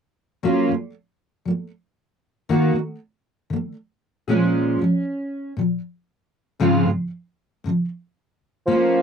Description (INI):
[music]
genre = pop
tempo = 117 BPM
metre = 4/4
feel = straight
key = unclear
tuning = A4 = 440 Hz
[part]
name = fingerpicked steel-string acoustic guitar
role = accompaniment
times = 0.4-9.0 s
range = Ab2 to Ab4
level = -19 LUFS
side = equal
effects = double-tracked left and right
[part]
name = dark bassoon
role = melody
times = 8.7-9.0 s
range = F3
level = -18 LUFS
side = equal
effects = none
[sound]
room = moderate booth ambience, RT60 0.2 s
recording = dry, close 1970s-style studio recording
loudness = -20 LUFS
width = side -7 dB against mid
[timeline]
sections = 0.4-8.7 A section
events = none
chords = 0.4 Gbmaj7; 2.5 Ebm; 4.3 Bbm7; 6.6 Dbmaj7/Ab